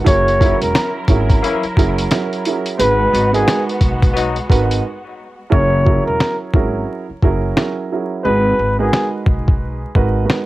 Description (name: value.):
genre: hip hop, boom-bap hip-hop.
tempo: 88 BPM.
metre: 4/4.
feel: swing 61% on 16ths.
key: unclear.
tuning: A4 = 440 Hz.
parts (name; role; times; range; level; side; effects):
dark concert grand piano; accompaniment; 0.0-10.5 s; F#3 to B4; -20 LUFS; right 5 dB; cassette tape, high-pass filter, low-pass filter.
muted studio string section; sustained chords; 0.0-5.5 s; F#3 to A#4; -26 LUFS; equal; high-pass filter, low-pass filter, cassette tape.
trumpet with bucket mute; melody; 0.1-9.1 s; G#4 to C#5; -18 LUFS; left 1 dB; high-pass filter, low-pass filter.
upright bass; bass; 0.1-10.2 s; E1 to B1; -20 LUFS; equal; none.
dusty soul sampler-style drum kit; drums; 0.1-10.5 s; hi-hat, kick drum, snare drum; -16 LUFS; equal; none.
warm horn section; stabs; 0.4-4.4 s; E3 to F#4; -24 LUFS; left 6 dB; high-pass filter, low-pass filter, cassette tape, tape echo.
room: light reverb.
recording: home recording on cassette, vinyl crackle.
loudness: -13 LUFS.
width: side -17 dB against mid.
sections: 0.0-5.5 A section; 5.5-10.5 B section.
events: break 4.8-5.5; hi-hats muted 5.5-10.5.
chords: 0.1 F#7; 2.8 G#m7; 5.5 F#7; 8.2 G#m7.